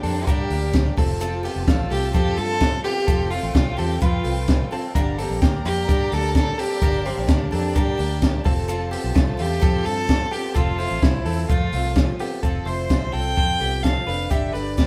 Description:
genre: jangly indie pop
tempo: 128 BPM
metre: 4/4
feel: straight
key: unclear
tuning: A4 = 441 Hz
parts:
  - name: warm violin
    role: melody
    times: 0.0-14.9 s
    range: C4 to G5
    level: -28 LUFS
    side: equal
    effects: none
  - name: picked twelve-string acoustic guitar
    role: accompaniment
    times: 0.0-14.9 s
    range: G2 to A4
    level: -33 LUFS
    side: equal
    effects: none
  - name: warm studio string section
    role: sustained chords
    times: 0.0-12.4 s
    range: F3 to Bb5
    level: -38 LUFS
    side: equal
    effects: none
  - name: direct-recorded clean electric guitar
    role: arpeggios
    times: 0.0-14.9 s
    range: A3 to C5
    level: -32 LUFS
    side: equal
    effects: none
  - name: vintage muted fingered electric bass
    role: bass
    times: 0.0-14.9 s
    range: F1 to G2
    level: -28 LUFS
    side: equal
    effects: none
  - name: compact cocktail drum kit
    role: drums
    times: 0.0-14.9 s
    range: hi-hat, kick drum, ride cymbal, snare drum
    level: -24 LUFS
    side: equal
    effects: none
room: moderate studio reverb, RT60 0.6 s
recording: band playing live in one room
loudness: -21 LUFS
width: mono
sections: 0.0-12.4 A section; 12.4-14.9 B section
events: none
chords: 0.0 Gm; 1.0 F; 5.0 Gm; 8.5 F; 14.3 Gsus2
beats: 0.27 0.74 | 1.21 1.68 2.15 2.61 | 3.08 3.55 4.02 4.48 | 4.95 5.42 5.89 6.35 | 6.82 7.29 7.75 8.22 | 8.69 9.16 9.62 10.09 | 10.56 11.03 11.49 11.96 | 12.43 12.90 13.37 13.84 | 14.31 14.78

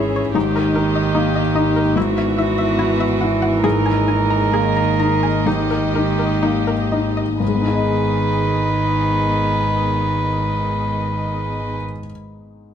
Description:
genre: neoclassical piano and strings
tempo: 60-76 BPM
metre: 4/4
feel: rubato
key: G# minor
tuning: A4 = 440 Hz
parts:
  - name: warm cello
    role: second line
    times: 0.0-11.8 s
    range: D#3 to E3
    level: -23 LUFS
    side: right 6 dB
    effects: none
  - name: dark viola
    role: accompaniment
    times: 0.0-11.8 s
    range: F#4 to B4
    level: -23 LUFS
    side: right 2 dB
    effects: none
  - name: felt-muted upright piano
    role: accompaniment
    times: 0.0-12.7 s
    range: G#2 to D#5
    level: -22 LUFS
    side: left 5 dB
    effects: none
  - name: dark chamber string section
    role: sustained chords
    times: 0.0-11.8 s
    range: A#3 to E5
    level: -27 LUFS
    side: equal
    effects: none
  - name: string-like resonator pluck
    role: arpeggios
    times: 0.0-7.3 s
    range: D#4 to A#5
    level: -26 LUFS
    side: left 2 dB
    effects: chorus, tape echo
  - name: rich double bass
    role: bass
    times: 0.0-11.8 s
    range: G#1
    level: -23 LUFS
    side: right 1 dB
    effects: none
room: moderate large studio reverb, RT60 1.2 s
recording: dark, warm production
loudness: -16 LUFS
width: side -8 dB against mid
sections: 0.0-7.4 A section; 7.4-11.3 B section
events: slowing down 0.0-7.4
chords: 0.4 D#/G#; 2.0 Esus2/G#; 3.6 G#sus2; 5.5 D#/G#; 7.4 G#m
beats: | 0.35 1.15 1.96 2.79 | 3.64 4.53 5.46 6.42 | 7.41 8.38 9.36 10.34

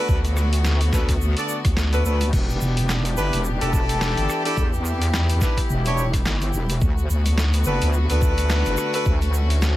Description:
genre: glitch hop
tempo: 107 BPM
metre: 4/4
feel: swing 57% on 16ths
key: unclear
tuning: A4 = 440 Hz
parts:
  - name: warm chamber string section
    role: sustained chords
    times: 0.0-9.8 s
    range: D3 to G4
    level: -28 LUFS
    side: left 2 dB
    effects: sidechain pumping
  - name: clear horn section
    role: stabs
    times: 0.0-9.2 s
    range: D4 to D5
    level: -26 LUFS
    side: equal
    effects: sidechain pumping, digital delay
  - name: wobble bass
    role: bass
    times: 0.1-9.8 s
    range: E1 to E2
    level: -21 LUFS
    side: equal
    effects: chorus
  - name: electronic kick drum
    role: drums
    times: 0.1-9.2 s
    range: none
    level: -22 LUFS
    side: equal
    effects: small room ambience
  - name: egg shaker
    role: percussion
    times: 0.1-9.7 s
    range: none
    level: -37 LUFS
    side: right 4 dB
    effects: none
  - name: boom bap sampler-style drum kit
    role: drums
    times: 0.2-9.8 s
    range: crash cymbal, hi-hat, rim click, snare drum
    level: -28 LUFS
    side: equal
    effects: small room ambience
room: little or no reverb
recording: vinyl crackle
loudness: -18 LUFS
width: side -15 dB against mid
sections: 0.0-9.8 A section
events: none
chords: 0.0 D6; 2.3 Em7; 6.8 D6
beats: | 0.09 0.65 1.21 1.77 | 2.33 2.89 3.45 4.01 | 4.57 5.13 5.70 6.26 | 6.82 7.38 7.94 8.50 | 9.06 9.62

